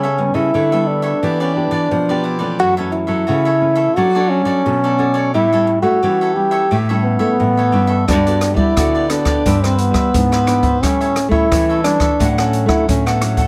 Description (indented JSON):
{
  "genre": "samba and choro",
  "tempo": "88 BPM",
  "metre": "4/4",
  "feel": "straight",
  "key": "unclear",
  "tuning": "A4 = 440 Hz",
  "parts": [
    { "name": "mellow trombone", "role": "melody", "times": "0.0-13.2 s", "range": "B3 to G4", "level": "-18 LUFS", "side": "equal", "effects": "plate reverb" },
    { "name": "cavaquinho", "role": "accompaniment", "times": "0.0-13.5 s", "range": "D4 to F#5", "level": "-27 LUFS", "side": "equal", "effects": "none" },
    { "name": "nylon-string guitar", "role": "accompaniment", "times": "0.0-13.5 s", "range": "F#2 to A4", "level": "-26 LUFS", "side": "equal", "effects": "none" },
    { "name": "nylon-string guitar", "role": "bass", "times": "0.0-13.5 s", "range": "G2 to A3", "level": "-22 LUFS", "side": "equal", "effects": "none" },
    { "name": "open jazz drum kit", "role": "drums", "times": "8.1-13.5 s", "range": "hi-hat, kick drum, rim click", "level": "-22 LUFS", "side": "equal", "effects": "none" }
  ],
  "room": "light reverb",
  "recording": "close, detailed microphones",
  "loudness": "-16 LUFS",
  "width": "mono",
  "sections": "0.0-13.5 A section",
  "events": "none",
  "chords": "0.0 A9/C#; 1.2 Em7; 2.6 F#m7; 4.0 Dmaj7/F#; 5.3 A7; 8.1 Gmaj9; 9.5 Cmaj9/G; 10.8 A7; 12.2 Dmaj7/A"
}